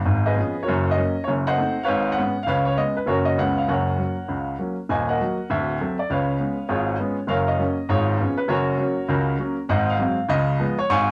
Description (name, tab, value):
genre	jazz, stride piano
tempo	199 BPM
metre	4/4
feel	swing 63% on 8ths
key	F# major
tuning	A4 = 440 Hz
part	warm baby grand piano	solo	0.1-11.1 s	D1 to C#6	-22 LUFS	equal	cassette tape
room	wet booth ambience, RT60 0.2 s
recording	home recording on cassette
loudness	-23 LUFS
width	mono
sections	0.0-4.9 A section; 4.9-11.1 B section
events	none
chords	0.1 C#7/G#; 0.7 F#; 1.3 F#dim7; 1.9 C#5/G#; 2.5 C#5; 3.1 F#; 3.4 C#7; 3.7 F#; 4.9 D#m; 5.5 D7; 6.1 C#7; 7.3 F#; 7.9 C#7/G#; 8.5 F#; 9.7 G#7; 10.3 C#7